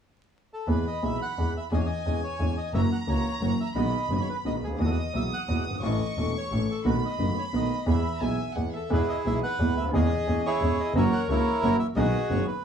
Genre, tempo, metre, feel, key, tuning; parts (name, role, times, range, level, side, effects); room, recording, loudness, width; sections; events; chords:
tango; 176 BPM; 3/4; rubato; E major; A4 = 440 Hz
bandoneon; melody; 0.5-12.6 s; E4 to F#5; -31 LUFS; right 1 dB; plate reverb
rich chamber violin section; second line; 0.7-8.9 s; E5 to D#6; -35 LUFS; right 4 dB
clear grand piano; accompaniment; 0.7-12.4 s; E1 to A4; -27 LUFS; equal
clear double bass; bass; 0.7-12.4 s; E1 to E2; -29 LUFS; equal
moderate studio ambience, RT60 0.5 s; vinyl crackle, small room ambience; -24 LUFS; side -8 dB against mid
0.7-8.9 A section; 8.9-12.6 A section
0.0 N.C.; 0.7 E; 1.7 C#m/E; 2.7 F#7; 3.8 B6; 4.8 Eadd9; 5.8 A; 6.9 B7; 7.9 E; 9.9 C#m/E; 11.0 F#7; 12.0 B6